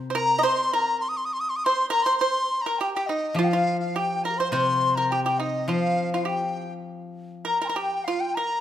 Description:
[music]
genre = chinese traditional, Chinese chamber ensemble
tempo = 103 BPM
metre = 2/4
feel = rubato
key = C yu mode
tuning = A4 = 440 Hz
[part]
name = steel-string zither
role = accompaniment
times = 0.0-0.4, 3.3-7.5 s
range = C3 to F3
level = -28 LUFS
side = left 2 dB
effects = none
[part]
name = pipa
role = second line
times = 0.1-8.6 s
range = Eb4 to Eb5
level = -28 LUFS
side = right 5 dB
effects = none
[part]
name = hollow dizi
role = melody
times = 0.2-8.6 s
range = Eb5 to Eb6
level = -26 LUFS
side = left 1 dB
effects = none
[part]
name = large dizi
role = second line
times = 0.2-8.6 s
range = F4 to C6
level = -28 LUFS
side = left 4 dB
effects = none
[sound]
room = moderate recital hall reverb, RT60 1.7 s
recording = none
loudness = -22 LUFS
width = side -11 dB against mid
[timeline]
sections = 0.0-2.2 A section; 2.2-8.6 B section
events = none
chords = none

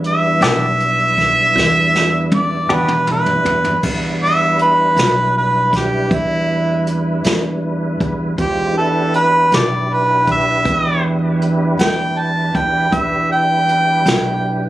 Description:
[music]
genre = slow blues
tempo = 53 BPM (dotted quarters)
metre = 12/8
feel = straight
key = E minor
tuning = A4 = 438 Hz
[part]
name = tonewheel organ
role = sustained chords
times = 0.0-14.7 s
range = G3 to C5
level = -23 LUFS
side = equal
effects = chorus vibrato, slow rotary speaker
[part]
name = upright bass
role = bass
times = 0.0-14.7 s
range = B1 to E2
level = -20 LUFS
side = right 1 dB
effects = none
[part]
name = jazz brush drum kit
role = drums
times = 0.0-14.2 s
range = crash cymbal, hi-hat, kick drum, snare drum, toms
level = -20 LUFS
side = equal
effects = none
[part]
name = warm harmonica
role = melody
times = 0.1-14.7 s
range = E4 to A5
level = -15 LUFS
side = right 1 dB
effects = overdrive
[part]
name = clean electric guitar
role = accompaniment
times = 0.4-2.9 s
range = E3 to G4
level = -18 LUFS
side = left 2 dB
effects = harmonic tremolo
[sound]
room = light reverb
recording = recorded on a phone in the room, studio ambience, compression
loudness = -13 LUFS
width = side -15 dB against mid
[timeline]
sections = 0.0-3.8 A section; 3.8-14.7 B section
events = drum fill 1.6-3.8; harmonica solo 3.8-14.7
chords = 0.0 Em7

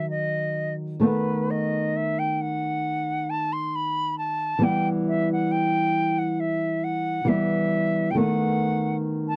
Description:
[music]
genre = romantic duo for flute and classical guitar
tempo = 67 BPM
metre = 4/4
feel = rubato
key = E minor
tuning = A4 = 437 Hz
[part]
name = silver concert flute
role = melody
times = 0.0-9.4 s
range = B4 to C6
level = -29 LUFS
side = equal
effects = none
[part]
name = nylon-string guitar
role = accompaniment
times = 0.0-9.4 s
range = D#3 to B3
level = -27 LUFS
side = equal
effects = none
[sound]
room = little or no reverb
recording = dry, close 1970s-style studio recording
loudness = -25 LUFS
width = mono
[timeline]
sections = 0.0-9.4 A section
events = none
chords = 0.0 B/D#; 1.0 B7/D#; 4.6 Em; 8.2 B7/D#

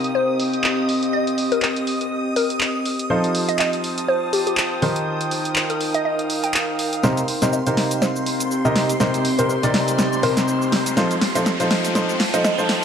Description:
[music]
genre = piano house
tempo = 122 BPM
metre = 4/4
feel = swing 56% on 16ths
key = C dorian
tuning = A4 = 440 Hz
[part]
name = string machine, violins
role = sustained chords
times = 0.0-12.8 s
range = C6 to Eb6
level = -30 LUFS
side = equal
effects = ensemble chorus
[part]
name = clear baby grand piano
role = riff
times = 0.0-12.8 s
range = C3 to Eb5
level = -22 LUFS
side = equal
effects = low-pass filter, digital delay
[part]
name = punchy analog drum machine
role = drums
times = 0.0-12.8 s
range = handclaps, hi-hat, shaker, snare drum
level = -23 LUFS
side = equal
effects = low-pass filter on hats, low-pass filter on snare, low-pass filter on perc
[part]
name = airy breathy pad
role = texture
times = 0.0-12.8 s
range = C4 to A5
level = -24 LUFS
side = left 1 dB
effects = chorus
[part]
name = glassy wavetable pluck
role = melody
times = 0.1-12.5 s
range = G4 to G5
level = -24 LUFS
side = left 1 dB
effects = chorus, digital delay
[part]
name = riser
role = sound effects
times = 9.1-12.8 s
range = none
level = -29 LUFS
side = equal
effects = none
[sound]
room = moderate lush hall reverb, RT60 2.4 s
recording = dark, warm production, high-pass filter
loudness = -18 LUFS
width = side -7 dB against mid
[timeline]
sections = 0.0-7.0 A section; 7.0-12.8 B section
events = build-up 7.0-12.8; drum fill 7.0-12.8; filter sweep on grand piano 7.0-12.8; filter sweep on synth pluck 7.0-12.8; riser 9.1-12.8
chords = 0.0 Cm7; 3.1 F7; 4.8 Eb6; 7.0 Cm7; 11.0 F7

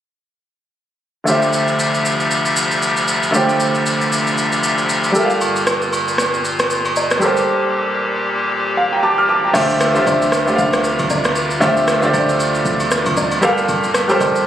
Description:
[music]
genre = amapiano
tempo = 116 BPM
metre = 4/4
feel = swing 58% on 16ths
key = D minor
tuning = A4 = 441 Hz
[part]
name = clear grand piano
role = accompaniment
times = 1.2-14.5 s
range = D3 to F6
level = -16 LUFS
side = right 1 dB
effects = none
[part]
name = pipe organ, clarinet reed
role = sustained chords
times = 1.3-14.5 s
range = D2 to E5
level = -20 LUFS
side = left 2 dB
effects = none
[part]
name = smooth R&B drum kit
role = drums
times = 1.3-14.5 s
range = crash cymbal, kick drum, rim click, shaker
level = -21 LUFS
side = equal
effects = none
[part]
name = sub bass with octave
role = bass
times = 5.4-14.5 s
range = G1 to D2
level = -31 LUFS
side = equal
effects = none
[part]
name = agogo bells and woodblock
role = percussion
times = 5.4-14.3 s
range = none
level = -24 LUFS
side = right 3 dB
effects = none
[sound]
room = light reverb, small room ambience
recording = recorded on a phone in the room, club reverb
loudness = -14 LUFS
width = side -10 dB against mid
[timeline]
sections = 1.3-9.5 A section; 9.5-14.5 B section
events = grand piano fill 8.5-9.5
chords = 1.3 Dm11; 5.2 Gm9; 9.5 Dm11; 13.4 Gm9

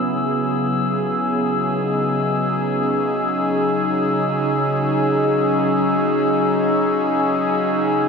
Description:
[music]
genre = ambient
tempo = free time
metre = none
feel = none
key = C# minor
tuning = A4 = 441 Hz
[part]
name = warm analog pad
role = sustained chords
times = 0.0-8.1 s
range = C#3 to G#4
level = -18 LUFS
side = equal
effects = chorus
[part]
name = glass harmonica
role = texture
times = 0.0-8.1 s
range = E6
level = -24 LUFS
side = left 4 dB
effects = none
[sound]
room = wet huge ambient reverb, RT60 8.0 s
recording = in a vast, echoing space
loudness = -17 LUFS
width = side -5 dB against mid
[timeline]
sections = 0.0-8.1 A section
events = none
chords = 0.0 C#madd9

